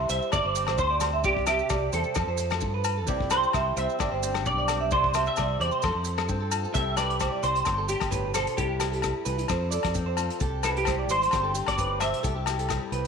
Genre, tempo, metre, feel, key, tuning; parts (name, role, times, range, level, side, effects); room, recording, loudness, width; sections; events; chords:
highlife guitar band; 131 BPM; 4/4; straight; C major; A4 = 439 Hz
semi-hollow electric guitar; melody; 0.0-13.1 s; G4 to E5; -27 LUFS; equal; ensemble chorus
picked steel-string acoustic guitar; accompaniment; 0.0-13.1 s; G2 to A4; -35 LUFS; left 9 dB
electric guitar at the edge of break-up; arpeggios; 0.0-13.1 s; G4 to E5; -31 LUFS; right 9 dB
fingered electric bass; bass; 0.0-13.1 s; G1 to G2; -31 LUFS; equal
warm soul drum kit; drums; 0.1-13.1 s; hi-hat, kick drum, rim click; -34 LUFS; left 3 dB
maracas; percussion; 0.1-13.1 s; -38 LUFS; right 14 dB
agogo bells; percussion; 0.3-12.8 s; -34 LUFS; left 14 dB
moderate echo chamber reverb, RT60 2.0 s; 1960s-style stereo with parts hard left and right; -24 LUFS; side -6 dB against mid
0.0-6.7 A section; 6.7-13.1 B section
0.3 Gsus4; 1.2 C; 2.2 F; 3.1 C; 4.0 Gsus4; 4.9 C; 5.8 F; 6.7 C; 7.7 Gsus4; 8.6 C; 9.5 F; 10.4 C; 11.3 Gsus4; 12.2 C